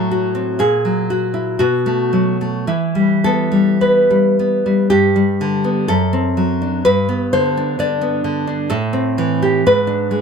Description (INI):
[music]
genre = romantic piece for solo classical guitar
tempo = 52-66 BPM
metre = 2/4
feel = rubato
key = E minor, G major from 4.9 s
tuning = A4 = 440 Hz
[part]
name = nylon-string guitar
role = solo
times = 0.0-10.2 s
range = F#2 to D5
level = -14 LUFS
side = equal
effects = none
[sound]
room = light reverb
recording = close, detailed microphones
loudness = -14 LUFS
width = side -6 dB against mid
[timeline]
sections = 0.0-4.9 A section; 4.9-10.2 B section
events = none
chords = 0.0 F#dim/A; 0.6 F#7/A#; 1.6 B5; 2.7 Em; 4.9 G; 5.9 D7/F#; 6.8 G; 8.7 Am7; 9.7 E7/G# (rootless)